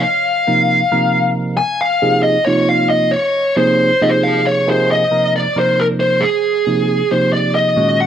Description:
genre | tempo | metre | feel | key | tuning
jazz | 271 BPM (eighths) | 7/8 | straight | Bb minor | A4 = 440 Hz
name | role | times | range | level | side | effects
bluesy overdriven lead guitar | melody | 0.0-8.1 s | Ab4 to Ab5 | -14 LUFS | left 1 dB | distortion
barky tine electric piano | accompaniment | 0.0-8.1 s | Bb2 to Bb4 | -17 LUFS | right 2 dB | phaser
room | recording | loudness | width
little or no reverb | dry, close 1970s-style studio recording | -12 LUFS | side -9 dB against mid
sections
0.0-4.7 A section; 4.7-8.1 B section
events
none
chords
0.0 Bb7sus2; 4.7 Bb13sus4

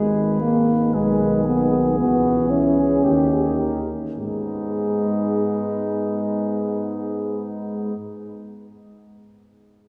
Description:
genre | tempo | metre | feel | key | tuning
classical, brass quintet | 100-115 BPM | 4/4 | rubato | G# minor | A4 = 440 Hz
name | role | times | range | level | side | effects
dark trumpet | melody | 0.0-8.0 s | D#4 to B4 | -37 LUFS | equal | none
clear trombone | accompaniment | 0.0-7.9 s | D#3 to G#3 | -31 LUFS | equal | none
mellow French horn | accompaniment | 0.0-7.9 s | G#3 to C#4 | -23 LUFS | equal | none
mellow bass trombone | bass | 0.0-7.9 s | G#1 to G#2 | -30 LUFS | equal | none
mellow flugelhorn | second line | 0.9-8.0 s | B3 to B4 | -34 LUFS | equal | none
room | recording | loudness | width
wet church reverb, RT60 3.6 s | recorded in a church or concert hall | -21 LUFS | mono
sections
0.0-4.2 A section; 4.2-8.7 B section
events
slowing down 0.0-4.2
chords
0.0 G#m; 0.9 G#m/B; 2.0 C#m; 3.1 D#7; 4.2 G#m

